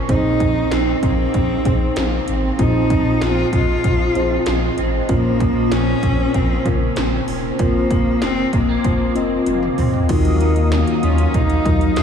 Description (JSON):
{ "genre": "1980s-style pop", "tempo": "96 BPM", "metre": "4/4", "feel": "straight", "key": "unclear", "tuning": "A4 = 442 Hz", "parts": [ { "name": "mellow FM electric piano", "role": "accompaniment", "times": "0.0-12.0 s", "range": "Bb2 to Eb5", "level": "-21 LUFS", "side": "left 3 dB", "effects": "chorus" }, { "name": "electric guitar through a small old amp", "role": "riff", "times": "0.0-12.0 s", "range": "Eb3 to F4", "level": "-26 LUFS", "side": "right 5 dB", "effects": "ensemble chorus, diffuse ambient delay" }, { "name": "rich cello", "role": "melody", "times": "0.1-12.0 s", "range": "Ab3 to F4", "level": "-21 LUFS", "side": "left 1 dB", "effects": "diffuse ambient delay" }, { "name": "round analog bass", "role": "bass", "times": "0.1-12.0 s", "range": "E1 to Eb2", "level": "-22 LUFS", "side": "equal", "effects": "none" }, { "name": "80s electronic pad drums", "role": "drums", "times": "0.1-12.0 s", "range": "crash cymbal, hi-hat, kick drum, snare drum, toms", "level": "-21 LUFS", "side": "right 1 dB", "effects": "gated reverb on snare and toms" }, { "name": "chorused pulse-width pad", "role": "sustained chords", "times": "10.1-12.0 s", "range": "Gb3 to Eb6", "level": "-24 LUFS", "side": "right 3 dB", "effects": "none" } ], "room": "moderate huge ambient reverb, RT60 8.6 s", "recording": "dreamy mix soaked in reverb, small room reverb", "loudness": "-15 LUFS", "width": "side -7 dB against mid", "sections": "0.0-10.1 A section; 10.1-12.0 B section", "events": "drum fill 9.5-10.1", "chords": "0.1 Ab/Bb; 2.6 Fm/Bb; 5.1 Bbmadd9; 7.6 Fsus4; 10.1 Ebmadd9", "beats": "| 0.09 0.72 1.34 1.97 | 2.59 3.22 3.84 4.47 | 5.09 5.72 6.34 6.97 | 7.59 8.22 8.84 9.47 | 10.09 10.72 11.34 11.97" }